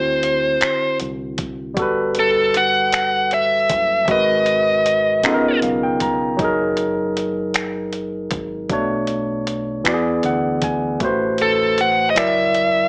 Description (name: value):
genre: slow six-eight R&B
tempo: 52 BPM (dotted quarters)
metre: 6/8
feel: straight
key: unclear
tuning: A4 = 444 Hz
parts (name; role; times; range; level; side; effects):
- smooth overdriven lead guitar; melody; 0.0-5.6, 11.4-12.9 s; A4 to F#5; -19 LUFS; equal; none
- barky tine electric piano; accompaniment; 0.0-12.9 s; B2 to A#5; -23 LUFS; equal; overdrive
- deep dub fingered electric bass; bass; 0.0-12.9 s; F#1 to E2; -35 LUFS; equal; none
- dusty soul sampler-style drum kit; drums; 0.2-12.7 s; finger snaps, hi-hat, kick drum; -26 LUFS; equal; none
room: moderate studio reverb, RT60 1.0 s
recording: small speaker sound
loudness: -19 LUFS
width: mono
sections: 0.0-12.9 A section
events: tine electric piano fill 5.2-6.4, 9.8-11.0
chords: 0.0 D9; 1.8 Gmaj9; 4.1 G#m9; 5.2 C#13; 6.4 F#69; 8.7 Bm9; 9.8 E7; 11.0 Am69; 12.2 F#7b13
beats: 0.62 | 1.77 2.92 | 4.08 5.23 | 6.39 7.54 | 8.69 9.85 | 11.00 12.15